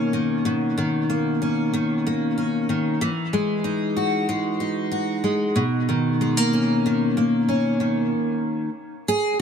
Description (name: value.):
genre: indie pop.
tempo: 94 BPM.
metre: 4/4.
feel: straight.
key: B major.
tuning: A4 = 440 Hz.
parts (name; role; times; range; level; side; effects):
picked steel-string acoustic guitar; solo; 0.0-9.4 s; B2 to G#4; -20 LUFS; equal; wide subtle chorus, warbly pitch drift, dub echo.
room: light reverb.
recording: echo-heavy mix.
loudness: -20 LUFS.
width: side -7 dB against mid.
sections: 0.0-8.1 A section; 8.1-9.4 B section.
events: steel-string acoustic guitar solo 8.1-9.4.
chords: 0.0 Bmaj9; 3.0 Emaj9; 5.6 Bmaj9; 8.1 N.C..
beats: | 0.45 1.09 1.73 2.37 | 3.00 3.64 4.28 4.92 | 5.56 6.20 6.84 7.48 | 8.12 8.76.